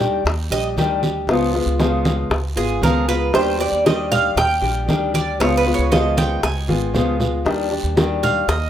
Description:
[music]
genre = latin, Cuban son and guajira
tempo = 117 BPM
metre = 4/4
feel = straight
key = Eb major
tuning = A4 = 440 Hz
[part]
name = fingerpicked steel-string acoustic guitar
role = accompaniment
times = 0.0-8.5 s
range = Db3 to G4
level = -20 LUFS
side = left 2 dB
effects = none
[part]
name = Cuban tres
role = arpeggios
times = 0.0-8.7 s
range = Ab4 to Ab5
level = -22 LUFS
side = right 4 dB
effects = tape echo, plate reverb
[part]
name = upright bass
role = bass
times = 0.0-8.7 s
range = Ab1 to Eb2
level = -24 LUFS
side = equal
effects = none
[part]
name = bongos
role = percussion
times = 0.0-8.7 s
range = none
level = -22 LUFS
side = left 3 dB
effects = none
[part]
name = congas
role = percussion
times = 0.0-8.7 s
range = none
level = -23 LUFS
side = right 1 dB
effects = none
[part]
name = guiro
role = percussion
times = 0.0-8.7 s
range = none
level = -35 LUFS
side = right 6 dB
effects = none
[sound]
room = wet studio reverb, RT60 0.7 s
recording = rough home demo mix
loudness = -16 LUFS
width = side -10 dB against mid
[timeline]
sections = 0.0-8.7 A section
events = Cuban tres solo 0.0-8.7; drum fill 6.7-7.5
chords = 0.0 Ebmaj7; 1.3 Db7; 3.3 Ebmaj7; 5.4 Db7; 7.5 Ebmaj7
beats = 0.26 0.77 | 1.29 1.80 2.32 2.83 | 3.35 3.86 4.37 4.89 | 5.40 5.92 6.43 6.95 | 7.46 7.97 8.49

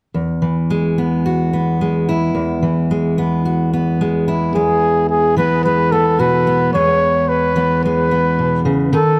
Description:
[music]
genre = folk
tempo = 109 BPM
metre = 4/4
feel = straight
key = E major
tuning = A4 = 440 Hz
[part]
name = fingerpicked steel-string acoustic guitar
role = accompaniment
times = 0.1-9.2 s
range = E2 to F#4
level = -18 LUFS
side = equal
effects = none
[part]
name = mellow trumpet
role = melody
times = 4.6-9.2 s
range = G#4 to C#5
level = -17 LUFS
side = equal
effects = plate reverb, tape echo
[sound]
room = moderate large studio reverb, RT60 1.1 s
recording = none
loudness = -16 LUFS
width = mono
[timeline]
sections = 0.1-4.5 A section; 4.5-9.2 B section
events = none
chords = 0.1 Eadd9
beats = | 0.15 0.70 1.25 1.80 | 2.35 2.90 3.44 3.99 | 4.54 5.09 5.64 6.19 | 6.74 7.29 7.84 8.39 | 8.94

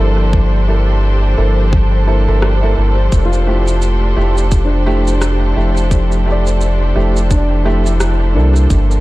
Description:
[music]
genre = ambient dub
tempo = 86 BPM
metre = 4/4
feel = swing 59% on 16ths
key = unclear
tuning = A4 = 440 Hz
[part]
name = rich studio string section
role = sustained chords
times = 0.0-9.0 s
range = F3 to C5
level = -20 LUFS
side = left 1 dB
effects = none
[part]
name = warm upright piano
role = stabs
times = 0.0-9.0 s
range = A3 to A4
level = -21 LUFS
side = right 2 dB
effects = dub echo
[part]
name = soft dub sub bass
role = bass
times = 0.0-9.0 s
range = F1 to C2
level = -13 LUFS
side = equal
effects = none
[part]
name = electronic kick drum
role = drums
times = 0.3-8.9 s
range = none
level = -14 LUFS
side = equal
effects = none
[part]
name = electronic rim click and shaker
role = drums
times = 2.4-9.0 s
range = none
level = -26 LUFS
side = right 1 dB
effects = dub echo
[part]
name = felt-muted upright piano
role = arpeggios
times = 3.3-9.0 s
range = D4 to D5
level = -22 LUFS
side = left 1 dB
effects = dub echo
[sound]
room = studio ambience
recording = dark, warm production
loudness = -11 LUFS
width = side -18 dB against mid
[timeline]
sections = 0.0-9.0 A section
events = none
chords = 0.0 Gm69; 3.1 Fmaj7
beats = | 0.33 1.03 1.73 2.42 | 3.12 3.82 4.52 5.21 | 5.91 6.61 7.31 8.01 | 8.70

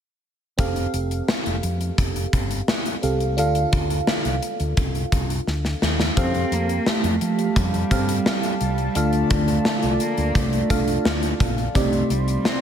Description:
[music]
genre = 1980s-style pop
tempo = 86 BPM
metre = 4/4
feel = straight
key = F major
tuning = A4 = 440 Hz
[part]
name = FM electric piano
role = accompaniment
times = 0.6-12.6 s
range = C3 to F5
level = -26 LUFS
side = right 1 dB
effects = chorus, phaser
[part]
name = mellow fretless electric bass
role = bass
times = 0.6-12.4 s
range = F1 to F3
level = -25 LUFS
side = equal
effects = none
[part]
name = gated 80s drum kit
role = drums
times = 0.6-12.6 s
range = hi-hat, kick drum, snare drum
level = -23 LUFS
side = equal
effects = none
[part]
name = warm cello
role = melody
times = 6.2-12.6 s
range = G3 to C4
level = -25 LUFS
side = right 2 dB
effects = digital delay
[part]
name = chorused pulse-width pad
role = sustained chords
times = 6.2-12.6 s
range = C4 to C6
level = -29 LUFS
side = equal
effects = none
[sound]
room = moderate lush hall reverb, RT60 3.1 s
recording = big arena sound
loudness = -19 LUFS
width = side -8 dB against mid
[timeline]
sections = 0.6-6.2 A section; 6.2-12.6 B section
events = drum fill 5.5-6.2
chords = 0.6 Fadd9; 3.4 Dm; 6.2 Fadd9; 9.0 Dm; 11.8 Cmadd9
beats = | 0.59 1.28 1.98 2.68 | 3.38 4.08 4.77 5.47 | 6.17 6.87 7.56 8.26 | 8.96 9.66 10.36 11.05 | 11.75 12.45

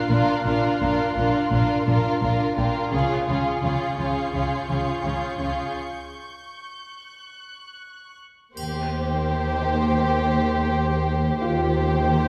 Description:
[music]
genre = cinematic, suspense film score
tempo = 85 BPM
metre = 4/4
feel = straight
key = unclear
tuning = A4 = 439 Hz
[part]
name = warm symphonic violin section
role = melody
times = 0.0-12.3 s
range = Ab4 to C5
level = -32 LUFS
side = equal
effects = none
[part]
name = warm studio violin section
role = second line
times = 0.0-12.3 s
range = F4 to G4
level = -28 LUFS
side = equal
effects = none
[part]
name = warm studio viola section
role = accompaniment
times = 0.0-12.3 s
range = Bb3 to D4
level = -30 LUFS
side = equal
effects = none
[part]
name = warm symphonic violin section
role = texture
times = 0.0-8.2 s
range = Db6 to C7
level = -40 LUFS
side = equal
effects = none
[part]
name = warm symphonic cello section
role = bass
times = 0.1-12.3 s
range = Bb2 to Eb3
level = -30 LUFS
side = equal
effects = none
[part]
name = warm symphonic double bass section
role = bass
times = 0.1-12.3 s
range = Bb1 to Eb2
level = -30 LUFS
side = equal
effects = none
[part]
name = felt-muted upright piano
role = texture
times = 2.6-12.3 s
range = F4 to G5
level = -35 LUFS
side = equal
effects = none
[part]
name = triangle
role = percussion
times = 8.6-9.9 s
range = none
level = -45 LUFS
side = equal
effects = none
[sound]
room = wet scoring stage reverb, RT60 1.5 s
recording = heard from further back in the room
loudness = -23 LUFS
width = mono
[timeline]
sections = 0.0-8.6 A section; 8.6-12.3 B section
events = break 5.8-8.6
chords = 0.0 Bb; 2.9 Db; 8.6 Eb6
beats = | 0.11 0.81 1.52 2.22 | 2.93 3.64 4.34 5.05 | 5.75 6.46 7.17 7.87 | 8.58 9.28 9.99 10.69 | 11.40 12.11

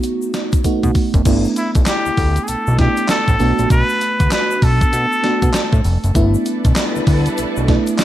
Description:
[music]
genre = R&B, new jack swing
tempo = 98 BPM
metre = 4/4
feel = swing 62% on 16ths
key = unclear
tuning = A4 = 441 Hz
[part]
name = FM electric piano with soft pad layer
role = accompaniment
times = 0.0-8.0 s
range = A3 to F#4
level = -20 LUFS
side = right 2 dB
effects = chorus
[part]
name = gated 80s digital drum machine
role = drums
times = 0.0-8.0 s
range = crash cymbal, handclaps, hi-hat, kick drum, snare drum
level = -17 LUFS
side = equal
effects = gated reverb, gated reverb snare
[part]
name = tube shaker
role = percussion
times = 0.0-8.0 s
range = none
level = -35 LUFS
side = left 8 dB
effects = none
[part]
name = fat analog bass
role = bass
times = 0.8-7.8 s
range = F1 to B2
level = -17 LUFS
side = equal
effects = none
[part]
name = trumpet with straight mute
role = melody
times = 1.6-5.9 s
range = E4 to B4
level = -19 LUFS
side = equal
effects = digital delay
[part]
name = warm studio string section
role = sustained chords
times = 6.2-8.0 s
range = G3 to B4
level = -25 LUFS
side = left 1 dB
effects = none
[sound]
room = digital ambience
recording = lossy compression artefacts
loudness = -13 LUFS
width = side -13 dB against mid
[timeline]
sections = 0.0-1.3 A section; 1.3-8.0 B section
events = drum fill 0.6-1.3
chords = 0.0 B7; 1.3 G6; 3.4 Bm7; 6.2 G6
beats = 0.03 0.64 | 1.25 1.87 2.48 3.09 | 3.70 4.32 4.93 5.54 | 6.15 6.76 7.38 7.99

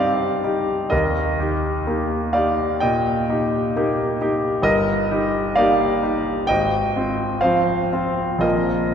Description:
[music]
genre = classical, romantic nocturne for solo piano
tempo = 56-68 BPM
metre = 4/4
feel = rubato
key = Eb major from 4.7 s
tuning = A4 = 440 Hz
[part]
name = bright concert grand piano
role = solo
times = 0.0-8.9 s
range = G1 to G5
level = -18 LUFS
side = equal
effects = none
[sound]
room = wet church reverb, RT60 2.9 s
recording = none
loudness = -18 LUFS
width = side -7 dB against mid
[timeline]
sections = 0.0-8.9 A section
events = none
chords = 0.0 Cm; 0.9 Eb; 4.7 Eb/G; 6.5 Fm/Ab; 8.4 Bb5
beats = | 0.92 1.87 2.83 3.76 | 4.66 5.58 6.50 7.44 | 8.44

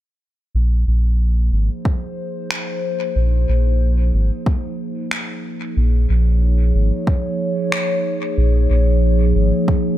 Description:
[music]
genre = ambient dub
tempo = 92 BPM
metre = 4/4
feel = swing 58% on 16ths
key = Bb minor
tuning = A4 = 440 Hz
[part]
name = warbly tape-like pad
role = sustained chords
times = 1.1-10.0 s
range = F3 to Db5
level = -22 LUFS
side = equal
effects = chorus, built-in reverb
[part]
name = soft dub sub bass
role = bass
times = 0.5-9.5 s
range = Ab1 to Bb1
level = -15 LUFS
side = equal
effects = tube saturation
[part]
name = electronic kick drum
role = drums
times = 1.9-9.8 s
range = none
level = -18 LUFS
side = equal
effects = overdrive
[part]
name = electronic finger snaps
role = drums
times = 2.5-7.9 s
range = none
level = -26 LUFS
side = equal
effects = dub echo
[sound]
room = light reverb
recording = none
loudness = -16 LUFS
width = side -13 dB against mid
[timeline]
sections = 0.6-10.0 A section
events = none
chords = 0.6 Bbm11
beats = | 0.55 1.20 1.86 2.51 | 3.16 3.81 4.46 5.12 | 5.77 6.42 7.07 7.73 | 8.38 9.03 9.68

